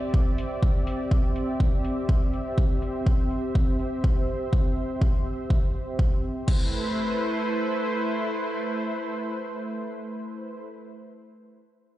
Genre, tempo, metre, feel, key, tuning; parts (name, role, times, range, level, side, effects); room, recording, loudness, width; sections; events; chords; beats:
melodic techno; 123 BPM; 4/4; straight; A minor; A4 = 439 Hz
lush unison pad; sustained chords; 0.0-10.6 s; A3 to E5; -29 LUFS; equal; chorus, sidechain pumping
electronic kick drum; drums; 0.1-6.6 s; -22 LUFS; equal; overdrive
deep house drum kit; drums; 0.4-6.6 s; crash cymbal, hi-hat; -40 LUFS; left 3 dB; overdrive, sidechain pumping on hats, low-pass filter on hats, sidechain pumping on cymbals, low-pass filter on cymbals, low-pass filter on room
light reverb, digital ambience; played on a big sound system in a bare room, stone room reverb, nothing above 10.6 kHz; -23 LUFS; side -14 dB against mid
0.0-6.5 A section; 6.5-10.4 B section
0.0 C; 6.5 Am
0.14 | 0.62 1.11 1.60 2.09 | 2.58 3.06 3.55 4.04 | 4.53 5.01 5.50 5.99 | 6.48 6.97 7.45 7.94 | 8.43 8.92 9.41 9.89